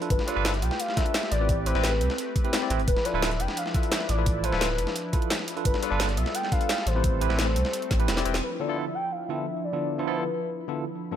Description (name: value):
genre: liquid drum and bass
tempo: 173 BPM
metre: 4/4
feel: straight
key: D dorian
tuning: A4 = 438 Hz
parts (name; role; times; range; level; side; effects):
- barky tine electric piano; accompaniment; 0.0-11.2 s; G2 to D5; -31 LUFS; equal; medium stereo tremolo, low-pass filter, ping-pong delay
- warm analog pad; sustained chords; 0.0-11.2 s; F3 to B5; -35 LUFS; equal; chorus, tremolo, sidechain pumping
- dusty soul sampler-style drum kit; drums; 0.0-8.4 s; hi-hat, snare drum; -34 LUFS; right 1 dB; overdrive, high-pass filter on hats, high-pass filter on snare
- warm velvety synth lead; melody; 0.1-10.5 s; B4 to G5; -31 LUFS; left 1 dB; chorus, cassette tape, ping-pong delay
- warm sub bass; bass; 0.1-8.4 s; D1 to C2; -27 LUFS; equal; tube saturation
- drum and bass drum kit; drums; 0.1-8.4 s; hi-hat, snare drum; -31 LUFS; equal; overdrive
- electronic kick drum; drums; 0.1-8.0 s; none; -26 LUFS; equal; overdrive
room: light reverb, digital ambience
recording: none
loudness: -24 LUFS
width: side -10 dB against mid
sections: 0.0-8.4 A section; 8.4-11.2 B section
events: drum fill 7.9-8.4; band accent 8.3; filter sweep on tine electric piano 8.4-11.2; filter sweep on analog synth pad 8.4-11.2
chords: 0.1 G9; 1.5 Am9; 2.9 Dm69; 5.7 G9; 7.0 Am9; 8.4 Dm69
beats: | 0.10 0.45 0.80 1.14 | 1.49 1.84 2.19 2.53 | 2.88 3.23 3.57 3.92 | 4.27 4.61 4.96 5.31 | 5.65 6.00 6.35 6.69 | 7.04 7.39 7.73 8.08 | 8.43 8.77 9.12 9.47 | 9.81 10.16 10.51 10.86